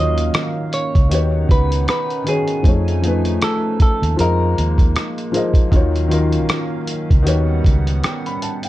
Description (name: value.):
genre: lo-fi hip hop.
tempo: 78 BPM.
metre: 4/4.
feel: swing 56% on 16ths.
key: unclear.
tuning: A4 = 440 Hz.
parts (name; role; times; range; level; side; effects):
semi-hollow electric guitar; melody; 0.0-5.3 s; Ab4 to Eb5; -23 LUFS; equal; low-pass filter, tape echo.
felt-muted upright piano; accompaniment; 0.0-8.7 s; Eb3 to B5; -22 LUFS; left 2 dB; low-pass filter.
hollow soft pad; sustained chords; 0.0-8.7 s; Eb3 to G#5; -27 LUFS; right 4 dB; lush chorus, low-pass filter.
vintage muted fingered electric bass; bass; 0.0-8.0 s; Db2 to F2; -18 LUFS; equal; none.
lo-fi sampler-style drum kit; drums; 0.2-8.7 s; hi-hat, kick drum, rim click; -17 LUFS; equal; none.
room: light reverb.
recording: dark, warm production.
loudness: -15 LUFS.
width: side -16 dB against mid.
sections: 0.0-8.7 A section.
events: none.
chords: 0.0 Ebm9; 1.1 Eb7alt; 2.6 F7alt; 4.2 Bb9sus4; 5.7 Ebm9; 7.3 Eb7alt.